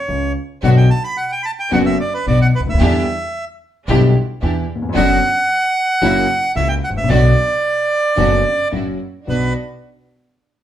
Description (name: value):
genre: tango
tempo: 111 BPM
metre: 4/4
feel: rubato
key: B minor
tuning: A4 = 445 Hz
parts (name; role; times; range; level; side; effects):
- bandoneon; melody; 0.0-9.5 s; B4 to B5; -17 LUFS; right 2 dB; none
- warm concert grand piano; accompaniment; 0.1-9.5 s; F#1 to F#4; -17 LUFS; left 2 dB; none
- upright bass; bass; 0.1-9.5 s; F#1 to E2; -19 LUFS; right 1 dB; none
- clear studio string section; stabs; 0.6-9.5 s; A#3 to G4; -24 LUFS; right 3 dB; none
room: wet studio reverb, RT60 0.7 s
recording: band playing live in one room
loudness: -14 LUFS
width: side -11 dB against mid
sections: 0.0-9.3 A section; 9.3-10.6 B section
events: none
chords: 0.0 N.C.; 0.6 Bm; 2.8 Em7; 4.9 Bm/F#; 6.0 F#7; 7.1 Bm; 8.7 F#7; 9.3 Bm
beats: 0.08 | 0.63 1.18 1.72 2.26 | 2.80 3.34 3.88 4.41 | 4.95 5.48 6.01 6.55 | 7.09 7.63 8.17 8.72 | 9.27